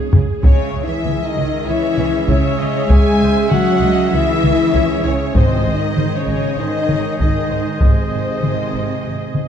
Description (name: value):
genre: cinematic, epic orchestral film score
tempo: 98 BPM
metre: 4/4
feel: straight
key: C# harmonic minor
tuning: A4 = 440 Hz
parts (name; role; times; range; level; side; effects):
- warm symphonic violin section; melody; 0.0-9.5 s; B#4 to G#5; -27 LUFS; left 4 dB; none
- warm symphonic violin section; second line; 0.0-9.5 s; B#4 to G#5; -28 LUFS; left 4 dB; none
- rich symphonic viola section; accompaniment; 0.0-9.5 s; G#4 to E5; -28 LUFS; equal; none
- clear woodwind section; sustained chords; 0.0-9.5 s; G#3 to D#5; -29 LUFS; equal; none
- dark French horn section; sustained chords; 0.0-9.5 s; B#3 to G#4; -22 LUFS; left 4 dB; none
- dark trombone section; sustained chords; 0.0-9.5 s; C#3 to C#4; -27 LUFS; right 2 dB; none
- warm trumpet; stabs; 0.0-9.5 s; C#4 to E5; -28 LUFS; equal; none
- warm symphonic cello section; bass; 0.1-9.5 s; B#2 to G#3; -22 LUFS; right 3 dB; none
- warm symphonic double bass section; bass; 0.1-9.4 s; G#1 to C#2; -23 LUFS; right 3 dB; none
- taiko ensemble; drums; 0.1-9.5 s; none; -16 LUFS; equal; none
- timpani; percussion; 5.3-6.2 s; G#2; -23 LUFS; left 2 dB; none
room: moderate scoring stage reverb, RT60 1.8 s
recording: dark, warm production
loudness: -14 LUFS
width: side -8 dB against mid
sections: 0.4-9.5 A section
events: drum fill 0.0-0.4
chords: 0.0 C#madd9; 5.4 G#